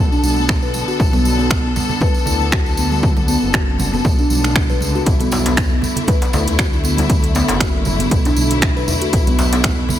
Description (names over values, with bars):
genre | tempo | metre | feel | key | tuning
afro house | 118 BPM | 4/4 | swing 55% on 16ths | B minor | A4 = 440 Hz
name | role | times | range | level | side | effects
rich studio string section | sustained chords | 0.0-10.0 s | D3 to A4 | -23 LUFS | left 4 dB | sidechain pumping
dark detuned saw bass | bass | 0.0-9.8 s | F#1 to D2 | -21 LUFS | equal | sidechain pumping
kalimba | arpeggios | 0.1-9.8 s | F#3 to B4 | -21 LUFS | equal | sidechain pumping, ping-pong delay
tambourine | percussion | 0.1-10.0 s | none | -28 LUFS | right 2 dB | none
congas | percussion | 0.2-10.0 s | none | -26 LUFS | right 3 dB | none
electronic kick drum | drums | 0.5-9.8 s | none | -18 LUFS | equal | overdrive
house drum kit | drums | 0.5-9.8 s | finger snaps, hi-hat | -22 LUFS | right 1 dB | overdrive
djembe | percussion | 5.3-9.8 s | none | -25 LUFS | left 1 dB | none
room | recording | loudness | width
small room ambience | none | -14 LUFS | side -11 dB against mid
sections
0.0-10.0 A section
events
none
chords
0.0 Bm7